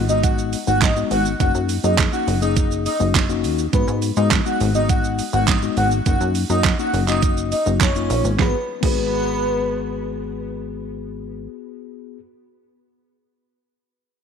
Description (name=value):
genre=dance-pop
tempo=103 BPM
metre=4/4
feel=straight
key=G# minor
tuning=A4 = 440 Hz
part: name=mellow tine electric piano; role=accompaniment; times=0.0-12.2 s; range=G#3 to G#4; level=-24 LUFS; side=left 14 dB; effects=sidechain pumping
part: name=plucky analog bass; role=bass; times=0.0-11.5 s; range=F#1 to G#2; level=-23 LUFS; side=equal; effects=sidechain pumping
part: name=airy dreamy lead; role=melody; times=0.1-10.1 s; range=B4 to F#5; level=-24 LUFS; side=right 1 dB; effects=chorus, sidechain pumping, tape echo
part: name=pop drum kit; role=drums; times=0.1-9.0 s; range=crash cymbal, handclaps, hi-hat, kick drum, shaker, snare drum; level=-21 LUFS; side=right 3 dB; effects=overdrive
room=light reverb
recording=1960s-style stereo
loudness=-17 LUFS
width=side -7 dB against mid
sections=0.0-8.4 A section; 8.4-10.7 B section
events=drop 0.0-8.4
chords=0.0 G#m7; 1.4 F#6; 3.7 G#m7; 6.1 D#m7/F#; 8.4 G#m7